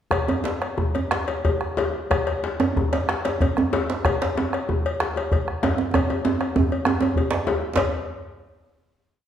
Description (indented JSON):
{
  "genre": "west african traditional, West African drum ensemble",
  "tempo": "120-140 BPM (dotted quarters)",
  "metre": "12/8",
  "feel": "straight",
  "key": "none",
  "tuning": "none",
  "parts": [
    { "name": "bombo", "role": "percussion", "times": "0.1-7.9 s", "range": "none", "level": "-26 LUFS", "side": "right 1 dB", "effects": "none" },
    { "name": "cowbell", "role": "percussion", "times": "0.1-7.9 s", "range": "none", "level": "-28 LUFS", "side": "left 4 dB", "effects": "none" },
    { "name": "djembe", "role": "percussion", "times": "0.1-7.9 s", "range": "none", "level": "-27 LUFS", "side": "left 4 dB", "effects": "none" },
    { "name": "djembe", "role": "percussion", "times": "0.3-7.9 s", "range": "none", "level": "-24 LUFS", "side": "right 4 dB", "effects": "none" }
  ],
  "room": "wet recital hall reverb, RT60 1.3 s",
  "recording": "heard from further back in the room",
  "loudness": "-21 LUFS",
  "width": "side -9 dB against mid",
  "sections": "0.1-7.8 A section; 7.8-9.3 final hit",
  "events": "speeding up 0.1-9.3; drum fill 5.9-7.8",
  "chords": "none",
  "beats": "| 0.12 0.62 1.12 1.62 | 2.11 2.60 3.09 3.58 | 4.06 4.54 5.01 5.48 | 5.95 6.41 6.87 7.32 | 7.76"
}